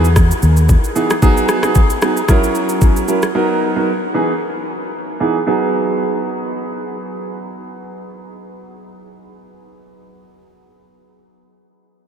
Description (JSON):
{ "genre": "afrobeats", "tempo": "113 BPM", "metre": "4/4", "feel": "swing 55% on 16ths", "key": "G# minor", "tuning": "A4 = 444 Hz", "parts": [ { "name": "clear grand piano", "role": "accompaniment", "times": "0.0-10.2 s", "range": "E3 to A#4", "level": "-17 LUFS", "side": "right 2 dB", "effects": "wide subtle chorus, low-pass filter" }, { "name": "vintage muted fingered electric bass", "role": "bass", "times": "0.0-0.7 s", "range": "D#2 to E2", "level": "-11 LUFS", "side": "left 1 dB", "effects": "none" }, { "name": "afro-pop drum kit", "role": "drums", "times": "0.0-3.3 s", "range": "kick drum, rim click, shaker", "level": "-16 LUFS", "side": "equal", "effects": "overdrive" } ], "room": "moderate huge ambient reverb, RT60 7.7 s", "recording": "dreamy mix soaked in reverb", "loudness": "-13 LUFS", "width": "side -8 dB against mid", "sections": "0.0-5.5 A section; 5.5-9.7 B section", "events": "filter sweep on grand piano 0.0-5.5", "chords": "0.0 Emaj7; 1.2 G#m7; 2.3 F#7; 3.3 Bmaj7; 4.1 Emaj7; 5.5 G#m7" }